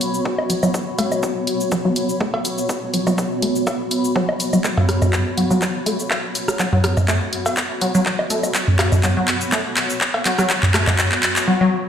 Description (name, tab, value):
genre	minimal techno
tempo	123 BPM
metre	4/4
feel	swing 54% on 16ths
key	unclear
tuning	A4 = 441 Hz
part	house drum kit	drums	0.0-11.5 s	handclaps, hi-hat, shaker	-22 LUFS	equal	high-pass filter on perc, high-pass filter on hats, high-pass filter on snare
part	granular cloud pad	texture	0.0-11.5 s	B3 to B5	-24 LUFS	equal	built-in reverb, sidechain pumping
part	electronic kick drum	drums	0.3-11.1 s	none	-27 LUFS	equal	high-pass filter on kick
part	booming analog drum machine	percussion	0.4-11.0 s	cowbell, rim click, toms, woodblock	-20 LUFS	equal	tape echo
part	resonant blip pluck	riff	0.5-11.7 s	F#3 to A3	-22 LUFS	equal	lush chorus, cassette tape, sidechain pumping, dub echo
room	wet digital room reverb, RT60 1.1 s, digital ambience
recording	played on a big sound system in a bare room, stone room reverb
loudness	-17 LUFS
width	side -8 dB against mid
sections	0.0-11.9 A section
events	build-up 0.0-11.9; filter sweep on synth pluck 0.0-11.9; drum fill 4.6-11.5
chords	0.0 F#sus4